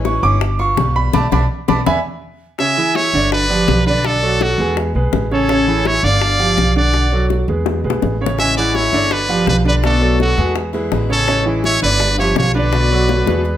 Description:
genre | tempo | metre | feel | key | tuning
latin, Cuban son and guajira | 166 BPM | 4/4 | straight | unclear | A4 = 440 Hz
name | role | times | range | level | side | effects
picked swing-style acoustic guitar | accompaniment | 0.0-2.0, 8.4-13.5 s | B2 to F#4 | -24 LUFS | left 5 dB | none
warm grand piano | arpeggios | 0.0-13.6 s | C#3 to D6 | -19 LUFS | right 2 dB | none
upright bass | bass | 0.0-13.6 s | G1 to E2 | -18 LUFS | equal | none
bongos | percussion | 0.1-13.4 s | none | -22 LUFS | left 7 dB | none
brilliant trumpet | melody | 2.6-13.6 s | F#4 to E5 | -17 LUFS | equal | none
breathy bright concert flute | second line | 2.6-13.6 s | A4 to G#5 | -26 LUFS | right 4 dB | none
room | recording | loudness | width
moderate large studio reverb, RT60 0.9 s | none | -13 LUFS | side -11 dB against mid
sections
0.0-2.6 A section; 2.6-13.6 B section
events
grand piano solo 0.0-2.6; band accent 1.1-2.6; drum fill 1.9-2.6, 7.7-8.4, 13.1-13.6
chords
0.4 G7; 1.1 Bm7; 1.9 E7; 2.6 C#m; 3.3 G7; 4.0 Bm7; 4.8 E; 5.5 Amaj7; 6.2 G7; 6.9 Bm7; 7.7 E; 8.4 Amaj7; 9.1 G7; 9.8 Bm7; 10.6 E7; 11.3 Amaj7; 12.0 G7; 12.7 Bm7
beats
0.05 0.41 0.78 | 1.14 1.50 1.87 2.23 | 2.59 2.96 3.32 3.68 | 4.04 4.41 4.77 5.13 | 5.49 5.86 6.22 6.58 | 6.94 7.30 7.67 8.03 | 8.39 8.75 9.11 9.47 | 9.84 10.20 10.56 10.92 | 11.28 11.64 12.00 12.37 | 12.73 13.09 13.45

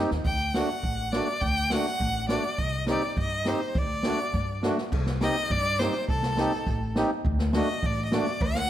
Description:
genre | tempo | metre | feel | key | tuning
klezmer | 103 BPM | 2/4 | straight | unclear | A4 = 440 Hz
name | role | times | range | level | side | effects
accordion | accompaniment | 0.0-8.3 s | A3 to G4 | -30 LUFS | equal | none
upright bass | bass | 0.0-8.7 s | A1 to G2 | -30 LUFS | left 1 dB | none
open jazz drum kit | drums | 0.1-8.7 s | crash cymbal, kick drum, snare drum | -30 LUFS | right 1 dB | none
clear violin | melody | 0.3-8.7 s | A4 to G5 | -29 LUFS | left 1 dB | none
room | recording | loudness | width
light reverb | none | -24 LUFS | side -12 dB against mid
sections
0.0-4.9 A section; 4.9-8.7 B section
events
none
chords
0.2 D; 2.6 Cm; 3.8 D; 4.9 Cm; 7.2 D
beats
| 0.24 0.83 | 1.42 2.00 | 2.58 3.17 | 3.75 4.33 | 4.92 5.50 | 6.08 6.67 | 7.25 7.83 | 8.41

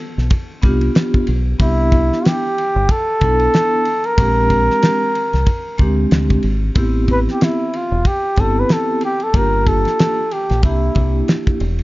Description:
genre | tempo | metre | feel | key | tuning
hip hop, jazz-hop | 93 BPM | 4/4 | swing 59% on 16ths | A minor | A4 = 439 Hz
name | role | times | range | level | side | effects
deep dub fingered electric bass | bass | 0.2-11.8 s | E1 to D2 | -17 LUFS | equal | none
cloth-damped thuddy drum kit | drums | 0.2-11.8 s | hi-hat, kick drum, ride cymbal, snare drum | -18 LUFS | equal | none
vibraphone with soft mallets | accompaniment | 0.6-11.6 s | Ab3 to A4 | -21 LUFS | equal | none
trumpet with bucket mute | melody | 1.6-11.2 s | E4 to B4 | -18 LUFS | equal | none
room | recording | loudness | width
light reverb, studio ambience | dark, warm production, nothing above 7.5 kHz | -14 LUFS | side -19 dB against mid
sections
0.0-6.8 A section; 6.8-11.8 B section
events
muted trumpet solo 6.8-11.8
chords
0.0 G7; 1.6 Cmaj9; 4.2 Bb13; 6.8 Am9; 9.3 Gm7; 10.6 C7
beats
0.31 0.96 | 1.60 2.25 2.89 3.54 | 4.18 4.83 5.47 6.12 | 6.76 7.41 8.05 8.70 | 9.34 9.99 10.63 11.28

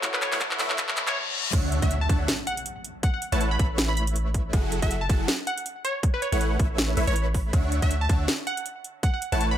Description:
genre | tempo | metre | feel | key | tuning
future bass | 160 BPM | 4/4 | swing 56% on 16ths, half-time | A major | A4 = 440 Hz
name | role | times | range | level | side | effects
felt-muted upright piano | accompaniment | 0.0-1.6 s | A3 to E5 | -38 LUFS | left 2 dB | sidechain pumping, dub echo
clear symphonic string section | sustained chords | 0.0-1.1 s | C#3 to F#4 | -44 LUFS | left 1 dB | none
electronic kick drum | drums | 0.0-9.1 s | none | -24 LUFS | equal | overdrive
trap drum kit | drums | 0.0-9.5 s | crash cymbal, handclaps, hi-hat, snare drum | -28 LUFS | equal | overdrive, high-pass filter on hats, high-pass filter on snare, high-pass filter on cymbals, high-pass filter on room
riser, reverse cymbal and impact | sound effects | 0.3-3.0 s | none | -33 LUFS | left 2 dB | none
glassy wavetable pluck | melody | 0.1-9.6 s | B4 to B5 | -31 LUFS | equal | chorus, sidechain pumping, dub echo
supersaw stab | riff | 0.3-9.6 s | D3 to B5 | -30 LUFS | right 1 dB | sidechain pumping, dub echo
long sustained 808-style bass | bass | 1.5-9.6 s | F#1 to D2 | -26 LUFS | equal | sidechain pumping
room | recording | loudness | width
light reverb, digital ambience | high-pass filter | -23 LUFS | side -11 dB against mid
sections
0.0-1.5 A section; 1.5-9.6 B section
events
build-up 0.0-1.5; drum fill 0.0-1.2; filter sweep on supersaw synth 0.0-1.5; riser 0.3-1.5; reverse cymbal 0.8-1.5; drop 1.5-9.6; impact 1.5-3.0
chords
0.0 A6; 1.5 Dmaj9; 3.0 A6; 4.5 F#m9; 6.0 A6; 7.5 Dmaj9; 9.0 A6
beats
| 0.03 0.41 0.78 1.16 | 1.53 1.91 2.28 2.66 | 3.03 3.41 3.78 4.16 | 4.53 4.91 5.28 5.66 | 6.03 6.41 6.78 7.16 | 7.53 7.91 8.28 8.66 | 9.03 9.41

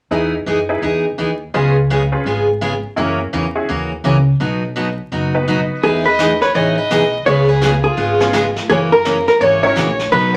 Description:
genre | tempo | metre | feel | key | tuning
country, western swing | 168 BPM | 4/4 | swing 63% on 8ths | E major | A4 = 439 Hz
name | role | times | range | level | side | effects
honky-tonk upright piano | accompaniment | 0.1-5.8, 8.2-9.8 s | B3 to B4 | -24 LUFS | equal | none
picked steel-string acoustic guitar | accompaniment | 0.1-10.3 s | B2 to G#4 | -20 LUFS | equal | none
upright bass | bass | 0.1-10.4 s | F#1 to F#2 | -23 LUFS | equal | none
vintage hollow-body jazz guitar | melody | 5.8-10.4 s | G#4 to C#5 | -18 LUFS | equal | none
dark fiddle | second line | 5.8-10.4 s | E#4 to D#5 | -22 LUFS | equal | none
jazz brush drum kit | drums | 5.8-10.4 s | brushed snare drum, hi-hat, snare drum | -28 LUFS | equal | none
room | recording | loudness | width
wet studio reverb, RT60 0.5 s | vinyl crackle | -16 LUFS | mono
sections
0.1-5.8 A section; 5.8-10.4 B section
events
none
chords
0.1 Emaj7; 1.5 C#7; 3.0 F#7; 4.4 B; 5.8 Emaj7; 7.3 C#7; 8.7 F#7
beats
| 0.11 0.47 0.82 1.18 | 1.54 1.90 2.26 2.62 | 2.97 3.33 3.69 4.05 | 4.41 4.76 5.12 5.48 | 5.84 6.19 6.55 6.91 | 7.26 7.62 7.98 8.34 | 8.69 9.05 9.41 9.77 | 10.12

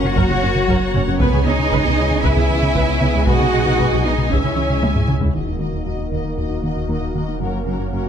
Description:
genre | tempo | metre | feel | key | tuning
cinematic, hybrid orchestral and electronic film score | 116 BPM | 4/4 | straight | C# dorian | A4 = 440 Hz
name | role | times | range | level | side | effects
rich symphonic violin section | melody | 0.0-8.1 s | F#5 to G#5 | -30 LUFS | left 4 dB | low-pass filter
rich studio violin section | second line | 0.0-8.1 s | A#4 to F#5 | -28 LUFS | left 3 dB | none
warm symphonic viola section | accompaniment | 0.0-8.1 s | C#4 to E5 | -27 LUFS | right 2 dB | low-pass filter
dark French horn section | sustained chords | 0.0-7.6 s | G#3 to G#4 | -29 LUFS | left 6 dB | low-pass filter
warm analog pad | sustained chords | 0.0-8.1 s | G#3 to C#5 | -26 LUFS | equal | chorus, low-pass filter
smooth synth bass | riff | 0.0-8.1 s | C#2 to B3 | -27 LUFS | left 4 dB | none
rich studio cello section | bass | 0.0-8.0 s | D#2 to F#4 | -23 LUFS | right 3 dB | none
warm sub bass | bass | 0.0-8.1 s | D#1 to C#2 | -24 LUFS | equal | none
solo taiko drums | drums | 0.0-6.4 s | none | -22 LUFS | equal | none
soft round pluck | arpeggios | 0.2-8.1 s | C#3 to F#4 | -28 LUFS | right 4 dB | none
warm studio double bass section | bass | 0.2-8.0 s | F#1 to F#2 | -25 LUFS | right 3 dB | none
room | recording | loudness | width
light reverb | none | -16 LUFS | side -8 dB against mid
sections
0.0-5.3 A section; 5.3-8.1 B section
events
drum fill 4.8-5.3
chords
0.0 F#; 1.2 C#m7; 3.3 G#m7/B; 4.3 C#m; 5.3 D#m; 7.4 F#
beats
0.17 0.69 | 1.20 1.72 2.24 2.76 | 3.27 3.79 4.31 4.83 | 5.34 5.86 6.38 6.89 | 7.41 7.93

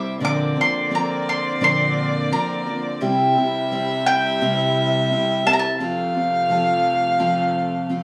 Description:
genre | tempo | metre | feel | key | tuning
acoustic folk duo or small band | 86 BPM | 4/4 | straight | unclear | A4 = 440 Hz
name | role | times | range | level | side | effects
mandolin | melody | 0.0-7.9 s | G5 to D6 | -24 LUFS | equal | none
dark fiddle | second line | 0.0-8.0 s | D5 to F5 | -25 LUFS | equal | none
picked steel-string acoustic guitar | accompaniment | 0.0-8.0 s | Bb2 to C5 | -26 LUFS | equal | none
warm chamber string section | sustained chords | 0.0-8.0 s | F2 to E4 | -32 LUFS | equal | none
room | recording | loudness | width
wet small room reverb, RT60 0.5 s | band playing live in one room, small room ambience | -20 LUFS | mono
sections
0.0-8.0 A section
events
none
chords
0.2 Bbadd9; 3.0 C; 5.8 F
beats
| 0.20 0.91 1.61 2.31 | 3.01 3.71 4.41 5.11 | 5.80 6.50 7.20 7.90

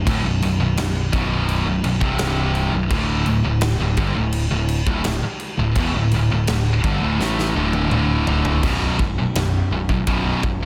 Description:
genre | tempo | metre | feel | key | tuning
heavy metal | 84 BPM | 4/4 | straight | B minor | A4 = 439 Hz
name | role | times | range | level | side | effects
scooped high-gain guitar | riff | 0.0-10.7 s | B1 to A3 | -25 LUFS | equal | distortion
sludgy distorted guitar | riff | 0.0-10.7 s | B1 to A3 | -26 LUFS | equal | overdrive
picked electric bass | bass | 0.0-10.7 s | B0 to A1 | -26 LUFS | equal | none
big rock drum kit | drums | 0.1-10.6 s | crash cymbal, kick drum, ride cymbal, snare drum, toms | -27 LUFS | equal | soft clipping on snare
room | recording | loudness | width
small room ambience | dense, heavily limited modern master | -20 LUFS | mono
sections
0.0-8.6 A section; 8.6-10.7 B section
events
drum fill 7.2-8.6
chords
0.0 Bm; 2.0 C5; 2.7 B5; 2.9 D5; 8.6 B5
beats
| 0.07 0.78 1.49 2.20 | 2.92 3.63 4.34 5.05 | 5.77 6.48 7.20 7.92 | 8.63 9.35 10.07

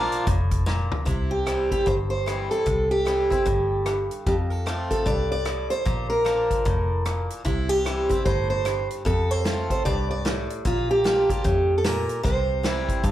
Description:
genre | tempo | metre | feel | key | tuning
honky-tonk and classic country | 150 BPM | 4/4 | swing 61% on 8ths | C mixolydian | A4 = 441 Hz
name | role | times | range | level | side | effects
picked swing-style acoustic guitar | accompaniment | 0.0-13.1 s | F2 to F4 | -30 LUFS | left 1 dB | slapback echo
vintage muted fingered electric bass | bass | 0.0-13.1 s | F1 to G2 | -27 LUFS | equal | none
natural country drum kit | drums | 0.1-13.1 s | hi-hat, kick drum, rim click, snare drum, toms | -28 LUFS | equal | none
picked steel-string acoustic guitar | melody | 1.1-13.1 s | E4 to D5 | -24 LUFS | right 1 dB | slapback echo
room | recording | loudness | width
light reverb, studio ambience | live gig heard through the venue's PA, club reverb | -21 LUFS | side -13 dB against mid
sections
0.0-1.1 A section; 1.1-13.1 B section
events
drum fill 0.7-1.1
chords
0.0 Bb; 1.1 C; 4.3 F; 5.9 Bb; 7.5 C; 9.1 F; 10.6 Bb; 12.2 C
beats
0.27 0.67 | 1.07 1.47 1.86 2.27 | 2.66 3.06 3.46 3.86 | 4.26 4.66 5.06 5.46 | 5.86 6.26 6.66 7.06 | 7.46 7.85 8.25 8.65 | 9.05 9.45 9.85 10.25 | 10.64 11.04 11.44 11.84 | 12.24 12.63 13.03

